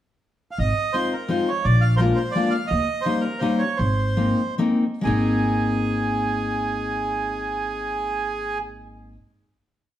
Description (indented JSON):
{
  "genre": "musette waltz",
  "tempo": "128-172 BPM",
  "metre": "3/4",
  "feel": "swing 54% on 8ths",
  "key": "Ab major",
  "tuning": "A4 = 439 Hz",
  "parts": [
    { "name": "bandoneon", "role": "melody", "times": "0.5-8.6 s", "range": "Ab4 to F5", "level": "-25 LUFS", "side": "right 3 dB", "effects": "none" },
    { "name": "upright bass", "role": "bass", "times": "0.6-9.2 s", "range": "Ab1 to Eb2", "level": "-23 LUFS", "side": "equal", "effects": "none" },
    { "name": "fingerpicked steel-string acoustic guitar", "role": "accompaniment", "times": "0.9-9.2 s", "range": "G3 to F4", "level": "-24 LUFS", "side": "left 2 dB", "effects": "none" }
  ],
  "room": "wet stone room reverb, RT60 1.1 s",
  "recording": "band playing live in one room",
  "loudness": "-20 LUFS",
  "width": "side -12 dB against mid",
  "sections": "0.0-0.6 pickup bar; 0.6-5.1 A section; 5.1-7.8 final chord",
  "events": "slowing down 2.7-5.1",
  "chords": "0.0 N.C.; 0.6 Ab6; 1.7 Bb7; 2.7 Eb7; 3.8 Abadd9",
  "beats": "0.23 | 0.58 0.94 1.30 | 1.65 2.00 2.36 | 2.71 3.06 3.42 | 3.79 4.18 4.60 | 5.05 5.52 5.98 | 6.44 6.90 7.36"
}